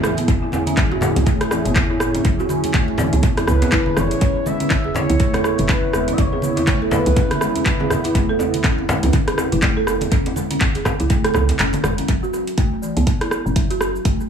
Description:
afro house; 122 BPM; 4/4; swing 59% on 16ths; F# minor; A4 = 440 Hz
warm analog pad; sustained chords; 0.0-12.0 s; A2 to G#4; -25 LUFS; right 3 dB; lush chorus, sidechain pumping
folk marimba with medium mallets; arpeggios; 0.0-14.2 s; E3 to A4; -23 LUFS; right 1 dB; sidechain pumping, low-pass filter, analog delay
afro-pop drum kit; drums; 0.0-14.3 s; handclaps, hi-hat, rim click, shaker; -24 LUFS; equal; overdrive, dub echo
congas; percussion; 0.0-12.1 s; -28 LUFS; right 2 dB; dub echo
woody FM bass; bass; 0.3-14.1 s; E1 to C#2; -22 LUFS; equal; sidechain pumping
electronic kick drum; drums; 0.3-14.2 s; -20 LUFS; equal
djembe; percussion; 0.3-12.0 s; -28 LUFS; left 3 dB; dub echo
expressive synth lead; melody; 3.5-7.9 s; B4 to E5; -25 LUFS; left 2 dB; lush chorus, analog delay
light reverb, digital ambience; echo-heavy mix, studio reverb; -16 LUFS; side -7 dB against mid
0.0-12.1 A section; 12.1-14.3 B section
drop 0.0-12.1; break 11.6-12.1; filter sweep on marimba 12.1-14.3
0.0 F#m11; 12.1 F#m7

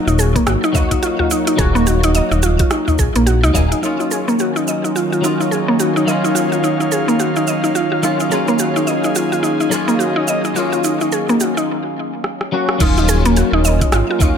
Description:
organic downtempo; 107 BPM; 4/4; swing 60% on 16ths; Eb minor; A4 = 440 Hz
clean electric guitar; accompaniment; 0.0-14.4 s; Gb3 to Ab4; -21 LUFS; left 3 dB; ensemble chorus, sidechain pumping, digital delay
mallet-like synth pluck; arpeggios; 0.0-14.4 s; Bb3 to Eb5; -17 LUFS; equal; chorus, digital delay
smooth gliding synth bass; bass; 0.1-3.7, 12.8-14.0 s; Eb1 to Db2; -16 LUFS; equal; sidechain pumping
afro-pop drum kit; drums; 0.1-14.3 s; cabasa, crash cymbal, hi-hat, rim click; -24 LUFS; right 3 dB; small room ambience
electronic kick drum; drums; 0.4-3.7, 12.8-14.3 s; -18 LUFS; equal; small room ambience
udu; percussion; 0.7-3.7, 14.2-14.3 s; -20 LUFS; equal
airy breathy pad; sustained chords; 4.3-14.4 s; Eb3 to F5; -22 LUFS; right 2 dB; chorus, sidechain pumping
light reverb; -14 LUFS; side -7 dB against mid
0.0-3.8 A section; 3.8-12.8 B section; 12.8-14.4 C section
break 11.7-12.8; drum fill 12.2-12.8
0.0 Ebm7

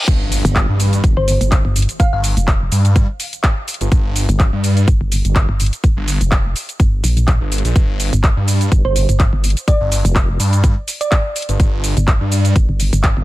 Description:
bass house; 125 BPM; 4/4; swing 55% on 16ths; G minor; A4 = 443 Hz
reverse cymbal and impact; sound effects; 0.0-2.0 s; -26 LUFS; equal
phased detuned saw bass; bass; 0.1-12.5 s; G1 to G2; -15 LUFS; equal; phaser, sidechain pumping, high-pass filter
electronic kick drum; drums; 0.1-13.1 s; -14 LUFS; equal
house drum kit; drums; 0.1-13.1 s; crash cymbal, handclaps, hi-hat, shaker; -22 LUFS; equal
pulsing pluck wobble bass; bass; 0.4-13.2 s; F1 to Bb1; -16 LUFS; equal; chorus, tube saturation, sidechain pumping
thumb-piano-like synth pluck; melody; 1.2-2.2, 8.8-11.7 s; C5 to F5; -24 LUFS; right 1 dB; chorus, dub echo
little or no reverb; high-pass filter; -13 LUFS; side -17 dB against mid
0.1-13.2 A section
drop 0.1-13.2; impact 0.1-2.0

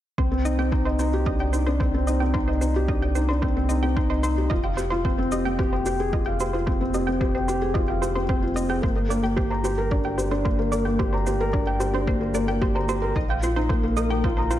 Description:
piano and strings electronica; 111 BPM; 4/4; straight; C minor; A4 = 436 Hz
analog pluck; arpeggios; 0.2-14.6 s; C5 to G5; -31 LUFS; right 2 dB; chorus, sidechain pumping, digital delay
felt-muted upright piano; riff; 0.2-14.6 s; Bb3 to Bb5; -24 LUFS; left 1 dB; digital delay
round analog bass; bass; 0.2-14.6 s; F1 to C2; -27 LUFS; equal; sidechain pumping
electronic kick drum; drums; 0.2-14.3 s; -26 LUFS; equal; overdrive
shaker; drums; 0.5-14.6 s; -41 LUFS; equal; overdrive
light reverb; dark, warm production; -21 LUFS; side -12 dB against mid
0.2-14.6 A section
0.2 Cmadd9; 4.5 Fmadd9; 8.8 Gm; 13.2 Bbsus4

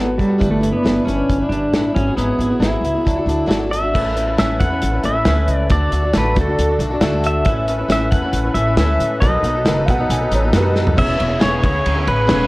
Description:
folk rock and heartland rock; 137 BPM; 4/4; straight; E mixolydian; A4 = 440 Hz
pedal steel guitar; melody; 0.0-12.5 s; G3 to F#5; -20 LUFS; equal
picked swing-style acoustic guitar; accompaniment; 0.0-12.5 s; G#2 to C#5; -22 LUFS; left 1 dB
upright bass; bass; 0.0-12.5 s; E1 to A2; -20 LUFS; equal
natural country drum kit; drums; 0.2-12.4 s; crash cymbal, hi-hat, kick drum, ride cymbal, snare drum, toms; -20 LUFS; equal
musette accordion; sustained chords; 3.9-12.5 s; C#4 to C#5; -29 LUFS; equal
dark upright piano; second line; 9.9-10.9 s; G4 to G#5; -24 LUFS; right 2 dB
light reverb, small room ambience; worn, warbling old tape, cassette tape, warbly pitch drift; -14 LUFS; side -20 dB against mid
0.0-3.9 A section; 3.9-11.0 B section; 11.0-12.5 C section
drum fill 10.8
0.4 G6; 2.0 Eadd9/G#; 3.1 D; 3.9 Aadd9; 5.7 D; 7.5 Aadd9; 9.2 B7; 11.0 E6

